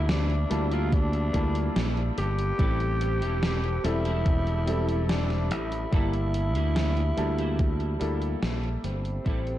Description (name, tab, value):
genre	vaporwave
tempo	72 BPM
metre	4/4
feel	straight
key	G dorian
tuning	A4 = 440 Hz
part	growling tenor saxophone	melody	0.0-9.6 s	C4 to G4	-32 LUFS	equal	tape echo
part	warm electric grand piano	accompaniment	0.0-9.6 s	G3 to A5	-33 LUFS	left 2 dB	wide subtle chorus, analog delay
part	warbly tape-like pad	sustained chords	0.0-9.6 s	Bb3 to E6	-40 LUFS	right 3 dB	chorus, built-in reverb
part	clean electric guitar	riff	0.0-9.5 s	Bb3 to C5	-41 LUFS	right 2 dB	ensemble chorus, analog delay
part	modern bright fingered electric bass	bass	0.0-9.6 s	E1 to D2	-27 LUFS	equal	none
part	gated 80s digital drum machine	drums	0.1-9.6 s	hi-hat, snare drum	-32 LUFS	equal	gated reverb, gated reverb snare, analog delay
part	electronic kick drum	drums	0.9-9.4 s	none	-25 LUFS	equal	none
room	light reverb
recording	echo-heavy mix, cassette tape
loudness	-24 LUFS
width	side -13 dB against mid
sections	0.0-9.6 A section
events	fade-out 7.0-9.6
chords	0.0 Gm69; 2.6 Am7; 5.9 Gm69